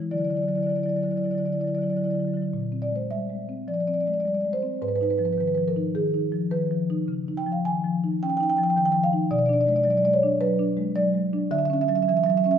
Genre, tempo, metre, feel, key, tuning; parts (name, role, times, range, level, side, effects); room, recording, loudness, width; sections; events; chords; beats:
classical, contemporary piece for solo marimba; 106 BPM; 4/4; rubato; A4 = 440 Hz
marimba with soft mallets; solo; 0.0-12.6 s; G#2 to G#5; -22 LUFS; equal
wet recital hall reverb, RT60 1.7 s; -22 LUFS; side -8 dB against mid
0.0-2.5 A section; 2.5-12.6 B section
0.1 Dadd9; 2.5 Bb9; 4.8 G#m6; 7.1 C#add9; 9.3 Bm6; 11.5 Dmaj9
| 0.10 0.72 1.33 1.94 | 2.53 3.10 3.67 4.24 | 4.81 5.37 5.95 6.51 | 7.08 7.64 8.21 8.77 | 9.31 9.86 10.41 10.97 | 11.53 12.09